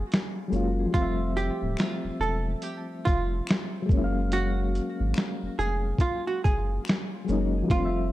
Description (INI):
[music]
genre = lo-fi hip hop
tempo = 71 BPM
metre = 4/4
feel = swing 62% on 16ths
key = unclear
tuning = A4 = 441 Hz
[part]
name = archtop guitar, miked and amplified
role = melody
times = 0.0-8.1 s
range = F4 to A4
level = -31 LUFS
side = right 3 dB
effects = none
[part]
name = soft electric-piano-like synth keys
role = accompaniment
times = 0.0-8.1 s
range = F3 to F5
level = -30 LUFS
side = left 2 dB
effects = chorus, tremolo
[part]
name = saturated sub bass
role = bass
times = 0.0-8.1 s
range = D1 to Ab1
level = -29 LUFS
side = equal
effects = none
[part]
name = boom bap sampler-style drum kit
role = drums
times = 0.1-7.9 s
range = finger snaps, hi-hat, kick drum, shaker, snare drum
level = -26 LUFS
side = equal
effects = vintage 12-bit sampler grit
[part]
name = finger snap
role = percussion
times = 1.8-7.1 s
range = none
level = -42 LUFS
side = left 4 dB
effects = none
[sound]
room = little or no reverb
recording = dark, warm production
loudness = -24 LUFS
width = side -15 dB against mid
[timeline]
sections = 0.0-8.1 A section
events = none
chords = 0.0 Gbmaj9; 0.9 Fmaj9; 3.9 Gbmaj9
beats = 0.09 | 0.94 1.78 2.63 3.47 | 4.32 5.16 6.01 6.85 | 7.70